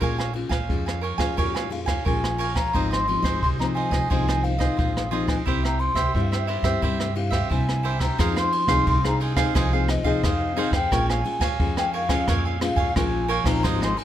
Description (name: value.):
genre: samba and choro.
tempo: 88 BPM.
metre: 4/4.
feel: straight.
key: F minor.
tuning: A4 = 440 Hz.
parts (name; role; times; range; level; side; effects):
cavaquinho; accompaniment; 0.0-14.0 s; Eb4 to Ab5; -29 LUFS; right 7 dB; none.
nylon-string guitar; accompaniment; 0.0-14.0 s; G2 to Ab4; -28 LUFS; left 5 dB; none.
upright bass; bass; 0.0-13.9 s; Ab1 to G2; -26 LUFS; right 1 dB; none.
jazz brush drum kit; drums; 0.0-14.0 s; kick drum, ride cymbal, rim click; -26 LUFS; equal; none.
baroque flute; melody; 1.7-14.0 s; Eb5 to C6; -27 LUFS; left 1 dB; plate reverb.
room: light reverb.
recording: close, detailed microphones.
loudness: -20 LUFS.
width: side -11 dB against mid.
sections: 0.0-8.2 A section; 8.2-14.0 B section.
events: none.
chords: 0.0 Bbm7; 2.7 Fm7/Ab; 5.5 C; 8.2 Fm7; 10.9 Bbm7.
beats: | 0.02 0.70 1.38 2.06 | 2.74 3.42 4.11 4.79 | 5.47 6.15 6.83 7.51 | 8.19 8.87 9.55 10.23 | 10.91 11.60 12.28 12.96 | 13.64.